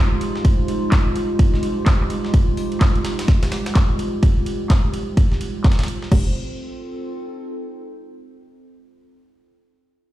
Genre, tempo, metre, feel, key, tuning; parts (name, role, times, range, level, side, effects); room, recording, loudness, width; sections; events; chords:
bass house; 127 BPM; 4/4; swing 61% on 16ths; F minor; A4 = 440 Hz
dark analog pad; sustained chords; 0.0-6.3 s; Ab3 to C5; -25 LUFS; right 1 dB; wide subtle chorus, sidechain pumping
warbly tape-like pad; texture; 0.0-8.0 s; Ab3 to C5; -34 LUFS; right 1 dB; chorus, built-in reverb, sidechain pumping
breakbeat sampler-style drum kit; drums; 0.2-6.1 s; hi-hat, ride cymbal, snare drum; -33 LUFS; right 1 dB; high-pass filter on cymbals, high-pass filter on snare, high-pass filter on hats
house drum kit; drums; 0.2-6.2 s; crash cymbal, handclaps, hi-hat; -29 LUFS; equal; low-pass filter on hats, low-pass filter on snare, low-pass filter on cymbals, low-pass filter on room
electronic kick drum; drums; 0.4-6.2 s; -16 LUFS; equal
hollow knocking FM bass; bass; 6.1-6.3 s; F1; -22 LUFS; equal; sidechain pumping
light reverb, digital ambience; played on a big sound system in a bare room, large studio reverb; -16 LUFS; side -15 dB against mid
0.0-6.1 A section; 6.1-8.0 B section
fade-out on ambient pad 0.0-6.1; filter sweep on drum 0.0-6.1
0.0 Fm; 6.1 F